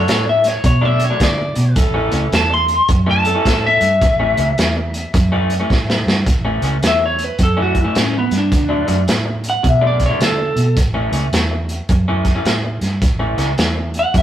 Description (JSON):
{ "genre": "electric blues shuffle", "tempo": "107 BPM", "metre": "4/4", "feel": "swing 64% on 8ths", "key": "A mixolydian", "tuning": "A4 = 439 Hz", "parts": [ { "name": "lightly driven lead guitar", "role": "melody", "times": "0.0-14.2 s", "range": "B3 to C6", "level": "-17 LUFS", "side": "left 1 dB", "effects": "none" }, { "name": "clear saxophone section", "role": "stabs", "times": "0.0-3.9 s", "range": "C#4 to A4", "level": "-24 LUFS", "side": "right 1 dB", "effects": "none" }, { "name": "vintage muted fingered electric bass", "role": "bass", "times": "0.0-14.2 s", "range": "A1 to D3", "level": "-19 LUFS", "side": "right 1 dB", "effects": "none" }, { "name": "electric guitar through a small old amp", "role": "riff", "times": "0.1-14.2 s", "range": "A2 to D4", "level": "-22 LUFS", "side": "left 1 dB", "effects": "none" }, { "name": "crunchy breakbeat drum kit", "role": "drums", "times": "0.1-14.2 s", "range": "hi-hat, kick drum, snare drum", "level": "-18 LUFS", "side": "equal", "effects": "none" } ], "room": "moderate stone room reverb, RT60 1.1 s", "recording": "rough rehearsal-room recording, warm saturation", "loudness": "-13 LUFS", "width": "side -11 dB against mid", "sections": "0.0-6.3 A section; 6.3-14.2 B section", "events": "lead electric guitar solo 0.0-6.3; drum fill 5.7-6.3", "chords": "0.0 D; 1.8 A; 8.5 D; 10.8 A", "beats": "0.07 0.64 1.20 | 1.76 2.33 2.89 3.45 | 4.01 4.58 5.14 5.70 | 6.26 6.83 7.39 7.95 | 8.52 9.08 9.64 10.20 | 10.77 11.33 11.89 12.45 | 13.02 13.58 14.14" }